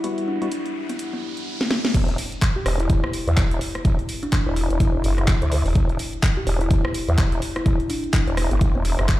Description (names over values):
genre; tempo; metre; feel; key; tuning
bass house; 126 BPM; 4/4; swing 59% on 16ths; E minor; A4 = 439 Hz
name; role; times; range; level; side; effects
kalimba; melody; 0.0-9.2 s; B3 to G4; -29 LUFS; left 1 dB; tape echo
deep dark ambient pad; sustained chords; 0.0-9.2 s; G3 to D5; -48 LUFS; equal; none
percussive organ stab; stabs; 0.0-0.5 s; G3 to F#4; -29 LUFS; left 3 dB; chorus, cassette tape, sidechain pumping, tape echo
house drum kit; drums; 0.0-9.2 s; crash cymbal, handclaps, hi-hat, rim click, snare drum; -27 LUFS; equal; none
riser; sound effects; 0.0-1.9 s; none; -35 LUFS; right 1 dB; none
warbly tape-like pad; texture; 0.0-1.5 s; G3 to B5; -35 LUFS; left 1 dB; chorus, built-in reverb, phaser, sidechain pumping
vowel-sweep wobble bass; bass; 1.9-9.2 s; E1 to E2; -21 LUFS; equal; chorus, tube saturation, sidechain pumping
electronic kick drum; drums; 1.9-9.2 s; none; -19 LUFS; equal; none
room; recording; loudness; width
little or no reverb; played on a big sound system in a bare room, large studio reverb; -19 LUFS; side -16 dB against mid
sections
0.0-1.9 A section; 1.9-9.2 B section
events
riser 0.0-1.9; filter sweep 0.0-1.9; drum fill 1.6-1.9; drop 1.9-9.2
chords
0.0 Emadd9